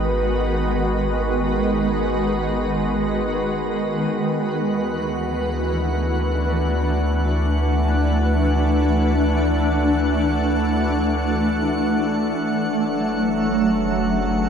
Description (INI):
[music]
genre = ambient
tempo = free time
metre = none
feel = none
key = unclear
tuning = A4 = 439 Hz
[part]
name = shimmering ambient pad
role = sustained chords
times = 0.0-14.5 s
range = Eb3 to Db5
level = -20 LUFS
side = equal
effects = chorus, built-in reverb
[part]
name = round analog bass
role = bass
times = 0.0-14.5 s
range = Gb1 to D2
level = -24 LUFS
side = equal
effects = none
[part]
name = drifting glass-harmonics texture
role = texture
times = 0.0-14.5 s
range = Eb5 to F#6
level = -31 LUFS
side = right 1 dB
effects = chorus, built-in reverb
[sound]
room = wet huge ambient reverb, RT60 8.3 s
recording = dark, warm production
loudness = -18 LUFS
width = side -7 dB against mid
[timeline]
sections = 0.0-14.5 A section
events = fade-in on synth texture 0.0-14.5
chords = 0.0 Abm7; 4.1 D69; 12.4 Gbmadd9